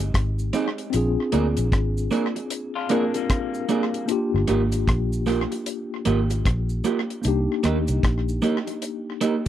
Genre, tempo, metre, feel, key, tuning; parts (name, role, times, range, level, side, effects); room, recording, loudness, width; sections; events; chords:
lovers rock reggae; 76 BPM; 4/4; swing 62% on 16ths; A4 = 440 Hz
mellow tine electric piano; accompaniment; 0.0-9.5 s; Ab3 to Bb4; -27 LUFS; left 4 dB; medium stereo tremolo
electric guitar through a small old amp; stabs; 0.0-9.5 s; Bb3 to Ab4; -24 LUFS; right 5 dB; spring reverb
vintage muted fingered electric bass; bass; 0.0-8.4 s; G1 to Eb2; -24 LUFS; equal
deep reggae drum kit; drums; 0.1-9.5 s; hi-hat, kick drum, rim click; -26 LUFS; equal; tape echo
cabasa; percussion; 0.4-9.5 s; -42 LUFS; right 6 dB
electric guitar through a small old amp; arpeggios; 2.8-4.1 s; G3 to F4; -30 LUFS; left 7 dB; spring reverb
light reverb; dry, close 1970s-style studio recording; -21 LUFS; side -11 dB against mid
0.0-9.5 A section
0.0 Fm7 (rootless); 0.9 Bb7; 4.1 Gm7; 7.2 Cm7